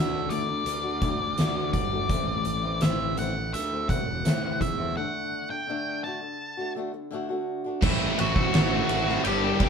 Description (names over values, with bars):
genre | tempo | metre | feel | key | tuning
quiet-loud alternative rock | 84 BPM | 4/4 | straight | A dorian | A4 = 440 Hz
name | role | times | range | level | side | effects
octave-fuzz lead guitar | melody | 0.0-9.7 s | F#4 to A5 | -30 LUFS | left 1 dB | distortion
fingerpicked swing-style acoustic guitar | arpeggios | 0.0-7.8 s | A2 to F#4 | -32 LUFS | left 2 dB | none
fuzz picked electric bass | bass | 0.0-9.7 s | E1 to A2 | -32 LUFS | right 1 dB | overdrive
oversized low-tuned drum kit | drums | 0.3-9.7 s | crash cymbal, hi-hat, kick drum, ride cymbal, snare drum | -27 LUFS | equal | none
biting overdriven guitar | riff | 7.8-9.7 s | G2 to E4 | -31 LUFS | right 8 dB | none
heavy high-gain guitar | riff | 7.8-9.7 s | G2 to A3 | -32 LUFS | equal | distortion
thick fuzz guitar | riff | 7.8-9.7 s | G2 to E4 | -30 LUFS | left 6 dB | distortion
room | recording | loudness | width
moderate studio reverb, RT60 0.8 s | band playing live in one room | -24 LUFS | side -6 dB against mid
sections
0.0-7.8 A section; 7.8-9.7 B section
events
break 5.0-7.8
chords
0.0 D; 2.1 Am; 5.0 D; 7.8 Am